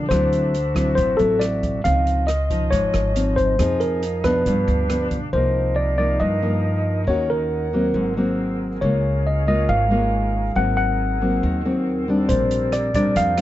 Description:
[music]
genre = bossa nova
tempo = 138 BPM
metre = 4/4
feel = straight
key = C minor from 5.3 s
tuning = A4 = 441 Hz
[part]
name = mellow tine electric piano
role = melody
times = 0.0-13.4 s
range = A4 to Gb5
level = -22 LUFS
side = left 1 dB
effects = none
[part]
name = nylon-string guitar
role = accompaniment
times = 0.0-13.4 s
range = G2 to Ab4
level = -22 LUFS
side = left 1 dB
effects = none
[part]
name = bright small flute group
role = sustained chords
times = 0.0-13.4 s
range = C4 to Gb5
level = -33 LUFS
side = right 2 dB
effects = none
[part]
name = upright bass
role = bass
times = 0.0-13.4 s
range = Ab1 to G2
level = -24 LUFS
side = equal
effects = none
[part]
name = open jazz drum kit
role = drums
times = 0.1-5.2, 12.3-13.4 s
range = hi-hat, kick drum, rim click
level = -28 LUFS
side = right 1 dB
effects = none
[sound]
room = light reverb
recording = dark, warm production, nothing above 7.6 kHz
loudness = -18 LUFS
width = side -14 dB against mid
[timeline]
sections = 0.0-5.3 A section; 5.3-13.4 B section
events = none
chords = 0.1 D9; 1.8 Dbmaj9; 3.6 Fm7; 4.5 G7; 5.3 Cm7; 7.1 Ebm7; 7.9 Ab9; 8.8 Db6; 10.6 Ab9; 12.3 Bb69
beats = | 0.10 0.54 0.97 1.41 | 1.85 2.28 2.72 3.15 | 3.59 4.03 4.46 4.90 | 5.33 5.77 6.20 6.64 | 7.08 7.51 7.95 8.38 | 8.82 9.25 9.69 10.12 | 10.56 10.99 11.43 11.86 | 12.30 12.73 13.17

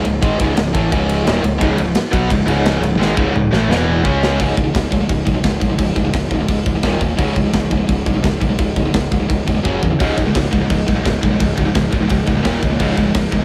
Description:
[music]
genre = heavy metal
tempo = 171 BPM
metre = 4/4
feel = straight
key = C# minor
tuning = A4 = 440 Hz
[part]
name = high-gain distorted guitar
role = riff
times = 0.0-13.4 s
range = C#2 to C#4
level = -21 LUFS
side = equal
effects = distortion
[part]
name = fuzz fingered electric bass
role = bass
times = 0.0-13.4 s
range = C#1 to E2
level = -22 LUFS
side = equal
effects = overdrive
[part]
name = tight metal drum kit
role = drums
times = 0.0-13.4 s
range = crash cymbal, kick drum, ride cymbal, snare drum, toms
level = -22 LUFS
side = equal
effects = none
[part]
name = scooped high-gain guitar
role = riff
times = 1.6-4.4, 10.0-13.4 s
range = C#2 to C#4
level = -26 LUFS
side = equal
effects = distortion
[sound]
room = light reverb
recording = none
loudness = -16 LUFS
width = mono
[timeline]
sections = 0.0-4.4 A section; 4.4-13.4 B section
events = drum fill 3.0-4.4, 9.6-10.0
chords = 0.0 C#m; 3.7 E5; 4.0 C#5; 6.8 D#5; 7.2 C#5; 9.6 F#5; 10.0 C#5; 12.5 D#5; 12.8 C#5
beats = | 0.22 0.56 0.91 1.26 | 1.61 1.96 2.31 2.65 | 3.00 3.35 3.70 4.05 | 4.39 4.74 5.09 5.44 | 5.79 6.14 6.49 6.84 | 7.19 7.54 7.89 8.24 | 8.59 8.94 9.29 9.64 | 9.99 10.35 10.70 11.05 | 11.40 11.75 12.10 12.45 | 12.80 13.15

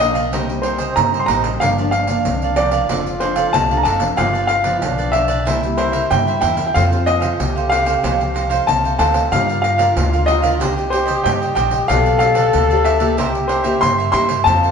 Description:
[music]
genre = samba and choro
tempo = 93 BPM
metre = 4/4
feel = straight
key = unclear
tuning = A4 = 440 Hz
[part]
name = warm baby grand piano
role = melody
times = 0.0-14.7 s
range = C5 to C6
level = -18 LUFS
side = equal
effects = none
[part]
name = warm trombone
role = second line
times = 0.0-14.7 s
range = Bb3 to A4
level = -23 LUFS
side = left 2 dB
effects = none
[part]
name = cavaquinho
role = accompaniment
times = 0.0-14.7 s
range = D4 to F5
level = -24 LUFS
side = right 5 dB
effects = none
[part]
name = nylon-string guitar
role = accompaniment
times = 0.0-14.7 s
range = G2 to D5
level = -25 LUFS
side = left 2 dB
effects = none
[part]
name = upright bass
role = bass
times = 0.0-14.7 s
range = F1 to G2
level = -22 LUFS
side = equal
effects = none
[part]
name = pandeiro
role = percussion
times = 0.0-14.7 s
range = none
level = -24 LUFS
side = right 1 dB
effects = none
[sound]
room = wet stone room reverb, RT60 1.3 s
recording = band playing live in one room, nothing above 10.6 kHz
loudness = -14 LUFS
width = side -6 dB against mid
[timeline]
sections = 0.0-14.7 A section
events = none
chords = 0.3 Cm7; 1.6 Gm7; 2.9 F6; 4.2 G7; 5.5 C7; 6.8 F; 9.3 Gm7; 10.6 Cmadd9; 11.9 G7/B; 13.2 C7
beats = 0.33 0.97 | 1.61 2.26 2.90 3.54 | 4.18 4.83 5.47 6.11 | 6.76 7.40 8.04 8.68 | 9.33 9.97 10.61 11.25 | 11.90 12.54 13.18 13.82 | 14.46

